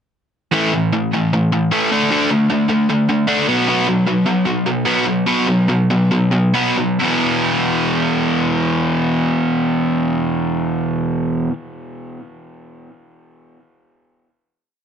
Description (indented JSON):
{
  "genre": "punk",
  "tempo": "130-153 BPM",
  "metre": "4/4",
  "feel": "straight",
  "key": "unclear",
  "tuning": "A4 = 437 Hz",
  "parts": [
    { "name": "overdriven electric guitar", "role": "solo", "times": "0.5-11.5 s", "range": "E2 to D4", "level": "-15 LUFS", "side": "equal", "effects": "tape echo" }
  ],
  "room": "light reverb",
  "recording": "dense, heavily limited modern master",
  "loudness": "-15 LUFS",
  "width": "side -7 dB against mid",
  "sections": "0.5-7.0 verse; 7.0-10.7 final chord",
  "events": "slowing down 3.7-7.0",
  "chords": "0.5 A5; 1.9 D5; 3.5 B5; 7.0 E5"
}